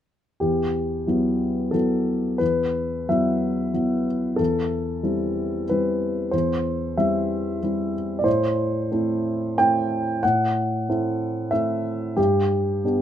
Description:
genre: neoclassical minimalist piano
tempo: 92 BPM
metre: 3/4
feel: rubato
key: E minor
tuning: A4 = 444 Hz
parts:
  - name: dark baby grand piano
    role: solo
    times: 0.4-13.0 s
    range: E2 to G5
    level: -21 LUFS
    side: equal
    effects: none
room: light reverb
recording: minimal, uncompressed stereo recording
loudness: -21 LUFS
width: side -10 dB against mid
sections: 0.4-13.0 A section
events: none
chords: 0.4 Emadd9; 4.4 C/E; 8.3 Am; 12.2 G

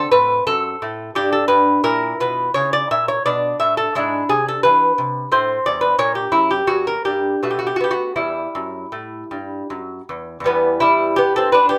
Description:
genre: classical, baroque-style dance for lute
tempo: 78-88 BPM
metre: 3/4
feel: rubato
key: E minor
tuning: A4 = 439 Hz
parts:
  - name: lute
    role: solo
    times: 0.0-11.8 s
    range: E2 to E5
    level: -18 LUFS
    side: equal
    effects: none
room: moderate studio reverb, RT60 0.5 s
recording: band playing live in one room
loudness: -18 LUFS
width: mono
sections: 0.0-10.4 A section; 10.4-11.8 B section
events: none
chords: 0.0 D7 (rootless); 1.2 G; 1.9 A#dim; 3.2 Bm; 3.9 E7/G#; 5.3 Am; 6.0 Edim; 7.4 Gmaj9/B; 8.2 Em

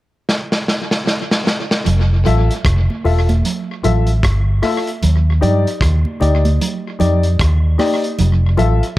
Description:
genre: roots reggae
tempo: 76 BPM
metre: 4/4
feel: swing 60% on 16ths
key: F major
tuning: A4 = 440 Hz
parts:
  - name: crunchy breakbeat drum kit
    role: drums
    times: 0.3-9.0 s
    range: hi-hat, kick drum, rim click, snare drum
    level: -20 LUFS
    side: equal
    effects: tape echo
  - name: vintage muted fingered electric bass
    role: bass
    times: 1.9-8.8 s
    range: E1 to G2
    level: -13 LUFS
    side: equal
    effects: none
  - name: congas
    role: percussion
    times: 1.9-8.8 s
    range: none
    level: -23 LUFS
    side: right 5 dB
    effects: none
  - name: dark upright piano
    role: stabs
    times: 2.3-8.8 s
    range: Eb4 to E5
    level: -20 LUFS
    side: left 4 dB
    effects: none
room: light reverb, studio reverb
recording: echo-heavy mix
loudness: -13 LUFS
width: side -17 dB against mid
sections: 0.0-1.9 A section; 1.9-9.0 B section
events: drum fill 0.3-1.9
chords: 0.0 N.C.; 1.9 Fmaj7; 5.0 Ebmaj7; 8.2 Fmaj7

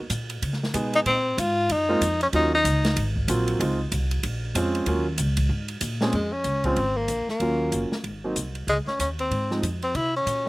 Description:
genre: jazz, small-group swing and bop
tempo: 189 BPM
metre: 4/4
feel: swing 61% on 8ths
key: Db major, Bb minor from 6.1 s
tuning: A4 = 438 Hz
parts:
  - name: upright bass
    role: bass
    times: 0.1-10.5 s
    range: Gb1 to Db3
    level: -27 LUFS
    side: equal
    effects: none
  - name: open jazz drum kit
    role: drums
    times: 0.1-10.5 s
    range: hi-hat, kick drum, ride cymbal, snare drum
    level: -31 LUFS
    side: right 1 dB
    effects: none
  - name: warm upright piano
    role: accompaniment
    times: 0.7-10.5 s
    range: Bb2 to Ab4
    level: -26 LUFS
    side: right 2 dB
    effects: slapback echo
  - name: warm tenor saxophone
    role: melody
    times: 1.0-3.1, 6.1-10.5 s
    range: Ab3 to F4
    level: -23 LUFS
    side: left 1 dB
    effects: none
room: little or no reverb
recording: recorded outdoors, with no room sound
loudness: -22 LUFS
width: side -20 dB against mid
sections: 0.0-6.1 A section; 6.1-10.5 B section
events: none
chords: 0.4 Dbsus2; 1.1 Gbmaj9#11; 2.3 Ebm9; 3.0 Ab13; 3.6 Dbmaj7; 4.2 Bbm7; 4.9 Ebm7; 5.5 Ab; 6.1 Bbm7; 7.4 Ebm7; 8.0 Ab7; 8.7 Dbmaj9; 9.9 C7b9

